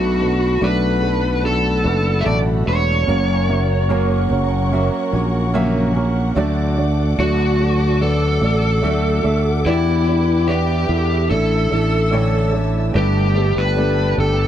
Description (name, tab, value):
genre	pop ballad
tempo	73 BPM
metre	4/4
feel	straight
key	D major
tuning	A4 = 440 Hz
part	lead guitar through a small cranked amp	melody	0.0-14.5 s	E4 to E5	-20 LUFS	left 1 dB	overdrive
part	warm grand piano	accompaniment	0.0-14.5 s	G2 to E5	-24 LUFS	right 6 dB	none
part	dark studio string section	sustained chords	0.0-14.5 s	D4 to E6	-29 LUFS	equal	none
part	fingerpicked steel-string acoustic guitar	arpeggios	0.0-14.5 s	F#2 to A4	-26 LUFS	left 2 dB	none
part	sustaining fretless electric bass	bass	0.0-14.5 s	E1 to E2	-18 LUFS	equal	none
room	light reverb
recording	dry, close 1970s-style studio recording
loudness	-15 LUFS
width	side -10 dB against mid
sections	0.0-12.9 A section; 12.9-14.5 B section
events	none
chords	0.0 Bm7; 3.1 F#; 6.4 D; 9.7 Em7; 11.3 Asus4; 12.9 Gadd9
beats	0.62 1.44 2.26 | 3.08 3.90 4.73 5.55 | 6.37 7.19 8.01 8.84 | 9.66 10.48 11.30 12.12 | 12.95 13.77